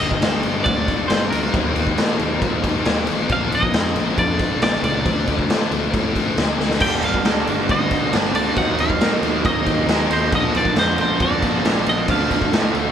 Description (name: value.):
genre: quiet-loud alternative rock.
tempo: 137 BPM.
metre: 4/4.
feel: straight.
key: G minor.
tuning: A4 = 440 Hz.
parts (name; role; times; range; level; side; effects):
twelve-string electric guitar; melody; 0.0-12.9 s; Bb4 to G5; -24 LUFS; equal; digital delay.
thick fuzz guitar; riff; 0.0-12.9 s; G2 to Eb4; -24 LUFS; left 8 dB; distortion.
fuzz fingered electric bass; bass; 0.0-12.9 s; G1 to Bb2; -26 LUFS; equal; overdrive.
raw garage drum kit; drums; 0.0-12.8 s; crash cymbal, kick drum, ride cymbal, snare drum, splash cymbal; -20 LUFS; equal; none.
overdriven semi-hollow guitar; riff; 6.8-12.9 s; G2 to Eb4; -24 LUFS; right 8 dB; harmonic tremolo.
room: light reverb.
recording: band playing live in one room.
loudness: -16 LUFS.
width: side -9 dB against mid.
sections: 0.0-12.9 A section.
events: drum fill 6.6.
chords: 0.0 Gm; 1.5 Ebm; 3.3 Bb; 5.1 Dm; 6.8 Gm; 8.6 Ebm; 10.3 Bb; 12.1 Dm.